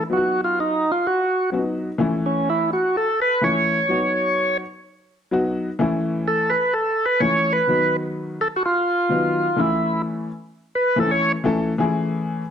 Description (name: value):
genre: soul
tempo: 127 BPM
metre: 4/4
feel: straight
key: unclear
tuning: A4 = 442 Hz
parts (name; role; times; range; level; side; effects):
- overdriven tonewheel organ; melody; 0.0-11.3 s; C#4 to C#5; -19 LUFS; right 1 dB; slow rotary speaker
- dark upright piano; accompaniment; 0.1-12.4 s; D#3 to A4; -22 LUFS; left 2 dB; none
room: moderate large studio reverb, RT60 1.1 s, studio reverb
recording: none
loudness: -18 LUFS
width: side -8 dB against mid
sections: 0.0-11.4 A section; 11.4-12.5 B section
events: tonewheel organ solo 0.0-11.4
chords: 0.1 B; 2.0 A; 3.9 B; 5.8 A; 7.7 B; 9.6 A